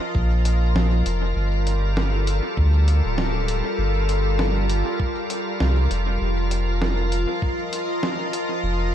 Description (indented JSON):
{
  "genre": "ambient dub",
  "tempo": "99 BPM",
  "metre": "4/4",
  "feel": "swing 56% on 16ths",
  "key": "unclear",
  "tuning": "A4 = 438 Hz",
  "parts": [
    { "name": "soft additive organ-like pad", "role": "sustained chords", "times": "0.0-8.9 s", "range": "F3 to Eb5", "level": "-25 LUFS", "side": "left 1 dB", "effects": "ensemble chorus, built-in reverb" },
    { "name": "warm sub bass", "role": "bass", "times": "0.1-8.9 s", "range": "D1 to D2", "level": "-20 LUFS", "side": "equal", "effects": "none" },
    { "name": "electronic kick drum", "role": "drums", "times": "0.1-7.6 s", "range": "none", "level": "-25 LUFS", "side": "equal", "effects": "none" },
    { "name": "lo-fi sampler-style drum kit", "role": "drums", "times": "0.5-8.5 s", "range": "hi-hat, snare drum", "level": "-29 LUFS", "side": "equal", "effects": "dub echo" }
  ],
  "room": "little or no reverb",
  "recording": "echo-heavy mix",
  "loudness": "-19 LUFS",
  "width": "side -10 dB against mid",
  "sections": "0.0-8.9 A section",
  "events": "none",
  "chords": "0.0 F7sus4; 1.4 Gm9; 6.2 F7sus4"
}